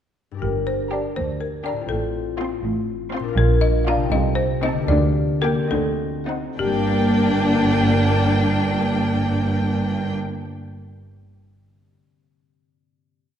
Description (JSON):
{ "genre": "cinematic, playful, whimsical film cue", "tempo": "68-82 BPM (dotted quarters)", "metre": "6/8", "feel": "straight", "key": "G minor", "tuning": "A4 = 440 Hz", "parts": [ { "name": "concert harp", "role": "arpeggios", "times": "0.3-10.5 s", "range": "G2 to G5", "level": "-27 LUFS", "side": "left 7 dB", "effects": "none" }, { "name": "folk marimba with hard mallets", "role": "melody", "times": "0.4-10.1 s", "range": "G4 to F5", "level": "-26 LUFS", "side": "left 3 dB", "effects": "none" }, { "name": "clear chamber cello section", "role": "bass", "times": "0.4-10.1 s", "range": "D2 to D3", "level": "-25 LUFS", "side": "right 3 dB", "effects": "none" }, { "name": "rich chamber double bass section", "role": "bass", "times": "0.4-10.1 s", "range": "G1 to D2", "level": "-25 LUFS", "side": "right 2 dB", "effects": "none" }, { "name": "rich chamber violin section", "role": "melody", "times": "0.9-10.1 s", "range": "F#5 to C6", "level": "-30 LUFS", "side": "left 1 dB", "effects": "none" }, { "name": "rich chamber violin section", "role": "second line", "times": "0.9-10.1 s", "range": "D4 to G4", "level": "-27 LUFS", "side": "left 2 dB", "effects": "none" }, { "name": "rich chamber viola section", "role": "accompaniment", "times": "0.9-10.1 s", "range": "Bb3 to D4", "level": "-26 LUFS", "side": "left 1 dB", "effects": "none" } ], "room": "wet scoring stage reverb, RT60 1.9 s", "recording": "dark, warm production", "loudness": "-18 LUFS", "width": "side -9 dB against mid", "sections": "0.4-6.6 A section; 6.6-10.1 final chord", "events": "slowing down 2.6-6.6", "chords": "0.4 Gm; 1.9 F/A; 3.4 Bb; 4.1 Adim/C; 4.9 Gm/D; 5.7 D7b9; 6.6 Gm", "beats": "| 0.43 1.17 | 1.91 2.64 | 3.38 4.13 | 4.91 5.72 | 6.58 7.46 | 8.32 9.19" }